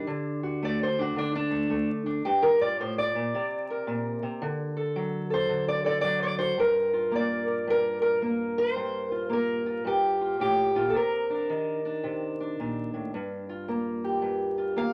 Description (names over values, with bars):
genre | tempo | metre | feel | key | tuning
acoustic country blues, solo or duo | 110 BPM | 4/4 | swing 64% on 8ths | G minor | A4 = 442 Hz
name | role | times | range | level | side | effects
fingerpicked steel-string acoustic guitar | solo | 0.0-14.9 s | G2 to F5 | -28 LUFS | equal | none
room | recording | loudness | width
wet studio reverb, RT60 0.5 s | vinyl crackle | -28 LUFS | mono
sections
0.0-6.6 A section; 6.6-14.9 B section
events
steel-string acoustic guitar solo 0.0-6.6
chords
0.1 D; 2.3 Gm9; 3.3 Csus2; 4.4 D; 6.6 Gm7; 10.9 Cm9; 13.1 Gm7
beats
| 0.08 0.62 1.17 1.71 | 2.25 2.79 3.34 3.88 | 4.42 4.96 5.50 6.04 | 6.59 7.13 7.67 8.22 | 8.76 9.31 9.85 10.40 | 10.95 11.49 12.04 12.58 | 13.13 13.67 14.22 14.77